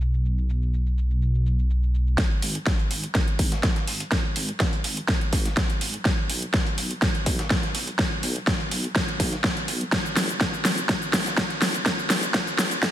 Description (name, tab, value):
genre	progressive house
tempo	124 BPM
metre	4/4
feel	straight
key	unclear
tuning	A4 = 440 Hz
part	dark detuned saw bass	bass	0.0-12.7 s	G#1 to B1	-25 LUFS	equal	sidechain pumping, high-pass filter
part	big-room dance drum kit	drums	0.0-12.9 s	hi-hat, shaker, snare drum	-24 LUFS	equal	overdrive, low-pass filter on perc, low-pass filter on snare, low-pass filter on hats
part	breakbeat sampler-style drum kit	drums	2.2-12.9 s	hi-hat, snare drum	-36 LUFS	equal	overdrive, sidechain pumping on hats, high-pass filter on hats, high-pass filter on snare, high-pass filter on room
part	electronic kick drum	drums	2.2-12.9 s	none	-25 LUFS	equal	none
room	moderate recital hall reverb, RT60 1.4 s, digital ambience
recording	dense, heavily limited modern master, high-pass filter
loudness	-22 LUFS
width	side -12 dB against mid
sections	0.0-2.2 A section; 2.2-12.9 B section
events	build-up 2.2-12.9; drum fill 2.2-12.9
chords	none